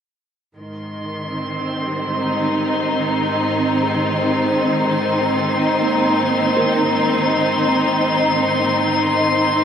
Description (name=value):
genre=ambient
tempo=61 BPM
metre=4/4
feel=straight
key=Ab major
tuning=A4 = 440 Hz
part: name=rich studio string section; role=sustained chords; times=0.5-9.6 s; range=Eb3 to Eb4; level=-18 LUFS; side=equal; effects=none
part: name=rich chamber cello section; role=bass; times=0.5-9.6 s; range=Ab2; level=-29 LUFS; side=right 1 dB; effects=none
part: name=drifting glass-harmonics texture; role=texture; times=0.7-9.6 s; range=C6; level=-24 LUFS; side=equal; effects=chorus, built-in reverb
part: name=analog drone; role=drone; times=2.2-9.6 s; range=C4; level=-26 LUFS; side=right 1 dB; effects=chorus
part: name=felt-muted upright piano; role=arpeggios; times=1.9-9.6 s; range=G3 to Bb4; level=-28 LUFS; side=equal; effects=tape echo
room=wet huge ambient reverb, RT60 7.6 s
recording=dreamy mix soaked in reverb, cassette tape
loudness=-16 LUFS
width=side -8 dB against mid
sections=0.5-9.6 A section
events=fade-in on felt piano 0.5-9.6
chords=0.5 Ab